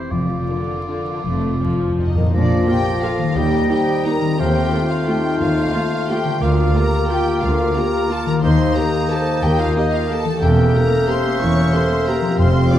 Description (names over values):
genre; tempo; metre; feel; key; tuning
classical, orchestral ballroom waltz; 150-197 BPM; 3/4; rubato; Bb major; A4 = 440 Hz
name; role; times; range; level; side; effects
rich studio violin section; second line; 0.0-12.8 s; D4 to D5; -27 LUFS; left 2 dB; none
warm oboe; second line; 0.0-12.8 s; C5 to F5; -29 LUFS; right 2 dB; none
concert harp; arpeggios; 0.0-12.8 s; Bb2 to F5; -24 LUFS; left 4 dB; none
rich studio cello section; bass; 0.1-12.7 s; D2 to Bb2; -23 LUFS; right 1 dB; none
rich studio double bass section; bass; 0.1-12.7 s; E1 to Eb2; -23 LUFS; right 1 dB; none
timpani; percussion; 0.1-2.3, 12.4-12.8 s; F2; -23 LUFS; equal; none
clear studio violin section; melody; 0.5-12.8 s; C4 to D6; -27 LUFS; left 1 dB; none
rich studio viola section; accompaniment; 0.5-12.8 s; D3 to G4; -28 LUFS; equal; none
dark French horn section; sustained chords; 0.5-12.8 s; A3 to C5; -24 LUFS; left 2 dB; none
mellow clarinet; second line; 2.3-12.8 s; C4 to F4; -28 LUFS; left 2 dB; none
warm bassoon; accompaniment; 2.3-12.8 s; F3 to C4; -26 LUFS; right 3 dB; none
silver concert flute; second line; 2.4-12.8 s; F6 to Bb6; -31 LUFS; left 1 dB; none
room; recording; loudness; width
wet scoring stage reverb, RT60 1.7 s; dark, warm production, vinyl crackle; -15 LUFS; side -11 dB against mid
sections
0.0-2.3 A section; 2.3-12.8 B section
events
timpani fill 1.2-2.3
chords
0.1 Bb/F; 1.2 F; 2.3 Bb; 3.4 Eb; 4.4 F7/Eb; 6.4 Bb/D; 8.4 Cm7/Eb; 10.4 Edim7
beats
| 0.11 0.48 0.88 | 1.25 1.61 1.99 | 2.34 2.68 3.04 | 3.37 3.70 4.05 | 4.39 4.72 5.07 | 5.39 5.73 6.08 | 6.41 6.74 7.09 | 7.42 7.75 8.10 | 8.43 8.76 9.10 | 9.43 9.75 10.09 | 10.41 10.74 11.09 | 11.41 11.73 12.07 | 12.39 12.71